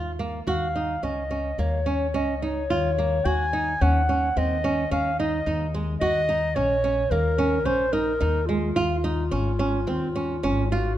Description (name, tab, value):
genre	contemporary instrumental, chamber music in an uneven meter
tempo	108 BPM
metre	5/4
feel	straight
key	Eb dorian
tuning	A4 = 440 Hz
part	dark clarinet	melody	0.0-11.0 s	F4 to Ab5	-26 LUFS	left 1 dB	none
part	flamenco guitar	arpeggios	0.0-10.9 s	Ab3 to Gb4	-27 LUFS	right 3 dB	none
part	upright bass	bass	0.0-11.0 s	Ab1 to Eb2	-27 LUFS	left 1 dB	none
room	light reverb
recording	none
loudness	-22 LUFS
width	side -12 dB against mid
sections	0.0-11.0 A section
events	none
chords	0.5 Gbmaj7 (rootless); 3.3 Ab7sus4/Eb; 6.0 Eb7(no3); 8.8 Db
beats	| 0.47 1.03 1.59 2.15 2.71 | 3.26 3.82 4.37 4.92 5.47 | 6.02 6.57 7.12 7.67 8.22 | 8.77 9.32 9.87 10.44